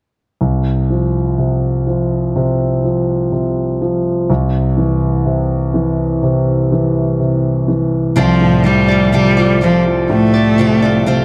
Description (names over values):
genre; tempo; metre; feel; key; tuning
pop ballad; 62 BPM; 4/4; straight; C major; A4 = 440 Hz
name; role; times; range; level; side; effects
warm concert grand piano; accompaniment; 0.4-11.2 s; C2 to F3; -16 LUFS; equal; none
bright cello; melody; 8.2-11.2 s; F3 to A3; -16 LUFS; equal; none
picked steel-string acoustic guitar; arpeggios; 8.2-11.2 s; C4 to D5; -22 LUFS; equal; none
room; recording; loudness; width
light reverb, small room ambience; dark, warm production; -15 LUFS; mono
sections
0.4-8.2 A section; 8.2-11.2 B section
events
none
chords
0.4 Csus4; 4.3 C; 8.2 Dm7/C